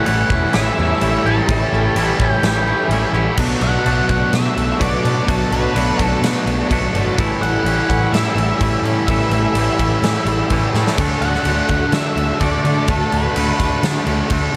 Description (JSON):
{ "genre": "rock, shoegaze and dream pop", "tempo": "126 BPM", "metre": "4/4", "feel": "straight", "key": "A mixolydian", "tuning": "A4 = 439 Hz", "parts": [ { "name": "octave-fuzz lead guitar", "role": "melody", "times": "0.0-13.8 s", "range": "A4 to A5", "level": "-26 LUFS", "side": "equal", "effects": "distortion, analog delay" }, { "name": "string machine, violins", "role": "sustained chords", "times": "0.0-14.6 s", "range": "F#4 to A5", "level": "-30 LUFS", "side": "equal", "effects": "none" }, { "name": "picked twelve-string acoustic guitar", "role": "arpeggios", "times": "0.0-14.6 s", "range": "E3 to G4", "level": "-31 LUFS", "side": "equal", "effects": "none" }, { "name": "thick fuzz guitar", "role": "riff", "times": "0.0-14.6 s", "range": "A2 to D4", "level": "-25 LUFS", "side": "equal", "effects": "distortion, subtle chorus" }, { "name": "twangy electric guitar", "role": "riff", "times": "0.0-14.6 s", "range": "A2 to F#4", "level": "-24 LUFS", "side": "equal", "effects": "reverse reverb" }, { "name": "vintage muted picked electric bass", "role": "bass", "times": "0.1-14.6 s", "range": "E1 to D3", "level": "-24 LUFS", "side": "equal", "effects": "none" }, { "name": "huge arena drum kit", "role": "drums", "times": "0.1-14.4 s", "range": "crash cymbal, kick drum, snare drum", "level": "-23 LUFS", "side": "equal", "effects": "none" } ], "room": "light reverb, small room ambience", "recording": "none", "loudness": "-17 LUFS", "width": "mono", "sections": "0.0-3.4 A section; 3.4-14.6 B section", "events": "drum fill 10.7", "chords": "0.0 A7; 3.4 Bm7; 7.2 A7; 11.0 Dmaj7" }